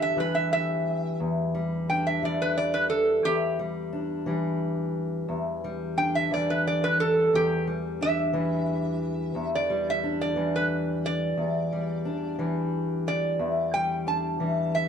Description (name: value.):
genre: acoustic country blues, solo or duo.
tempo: 59 BPM (dotted quarters).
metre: 12/8.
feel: straight.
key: E minor.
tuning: A4 = 440 Hz.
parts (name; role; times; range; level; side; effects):
metal-body resonator slide guitar; melody; 0.0-14.9 s; G4 to A5; -26 LUFS; right 2 dB; plate reverb.
fingerpicked steel-string acoustic guitar; accompaniment; 0.0-14.9 s; E2 to G4; -27 LUFS; left 2 dB; none.
room: moderate studio reverb, RT60 0.6 s.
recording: dark, warm production.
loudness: -24 LUFS.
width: side -8 dB against mid.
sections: 0.0-14.9 A section.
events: none.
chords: 0.0 Em7.